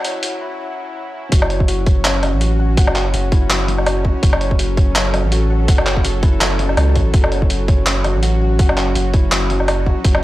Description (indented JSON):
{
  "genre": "half-time drum and bass",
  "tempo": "165 BPM",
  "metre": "4/4",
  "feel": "swing 55% on 16ths, half-time",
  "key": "unclear",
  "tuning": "A4 = 439 Hz",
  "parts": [
    { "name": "bowed-like drone", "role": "sustained chords", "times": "0.0-10.2 s", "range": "F#3 to A4", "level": "-25 LUFS", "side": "equal", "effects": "built-in reverb, sidechain pumping" },
    { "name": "felt-muted upright piano", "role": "arpeggios", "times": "0.0-10.2 s", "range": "F#3 to F#5", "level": "-25 LUFS", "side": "left 2 dB", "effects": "tape echo" },
    { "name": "boom bap sampler-style drum kit", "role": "drums", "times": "0.0-10.2 s", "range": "handclaps, hi-hat, woodblock", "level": "-19 LUFS", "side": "equal", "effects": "high-pass filter on hats, high-pass filter on perc, high-pass filter on snare, high-pass filter on room" },
    { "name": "saturated sub bass", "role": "bass", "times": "1.3-10.2 s", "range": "F#1 to C#2", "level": "-18 LUFS", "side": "equal", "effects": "transformer saturation" },
    { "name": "electronic kick drum", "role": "drums", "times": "1.3-10.1 s", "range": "none", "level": "-14 LUFS", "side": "equal", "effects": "overdrive, high-pass filter on kick" }
  ],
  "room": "little or no reverb",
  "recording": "dry, gritty hardware recording, high-pass filter",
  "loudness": "-13 LUFS",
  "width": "side -16 dB against mid",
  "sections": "0.0-1.3 A section; 1.3-10.2 B section",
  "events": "build-up 0.0-1.3; filter sweep 0.0-1.3; break 0.6-1.3; drop 1.3-10.2",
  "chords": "0.0 F#5",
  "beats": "0.23 0.59 0.96 | 1.32 1.68 2.05 2.41 | 2.77 3.14 3.50 3.87 | 4.23 4.59 4.96 5.32 | 5.68 6.05 6.41 6.77 | 7.14 7.50 7.87 8.23 | 8.59 8.96 9.32 9.68 | 10.05"
}